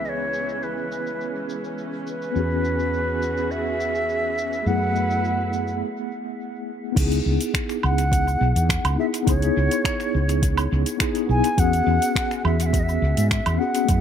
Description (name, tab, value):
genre	sunset chillout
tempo	104 BPM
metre	4/4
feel	straight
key	C# minor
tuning	A4 = 440 Hz
part	wooden flute	melody	0.0-14.0 s	B4 to G#5	-26 LUFS	equal	vintage 12-bit sampler grit, dub echo
part	mellow tine electric piano	accompaniment	0.0-14.0 s	A3 to G#4	-26 LUFS	moving between left 7 dB and right 7 dB	medium stereo tremolo, auto-pan, low-pass filter, dub echo
part	dark chamber string section	sustained chords	0.0-5.8 s	C#3 to B4	-30 LUFS	right 1 dB	low-pass filter
part	woody fretless electric bass	bass	0.0-14.0 s	B1 to G#2	-23 LUFS	equal	wide subtle chorus
part	smooth R&B drum kit	drums	0.1-14.0 s	cabasa, crash cymbal, finger snaps, hi-hat, woodblock	-29 LUFS	right 2 dB	overdrive, low-pass filter on hats, low-pass filter on perc, low-pass filter on snare, low-pass filter on cymbals, low-pass filter on room, dub echo
part	electronic kick drum	drums	7.0-14.0 s	none	-23 LUFS	equal	overdrive
room	light reverb, digital ambience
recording	echo-heavy mix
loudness	-20 LUFS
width	side -8 dB against mid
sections	0.0-7.0 A section; 7.0-14.0 B section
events	filter sweep on tine electric piano 0.0-7.0; filter sweep on string section 0.0-7.0; break 5.8-7.0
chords	0.0 C#m7; 2.3 E69; 4.7 F#m11; 7.0 C#m7; 11.6 E69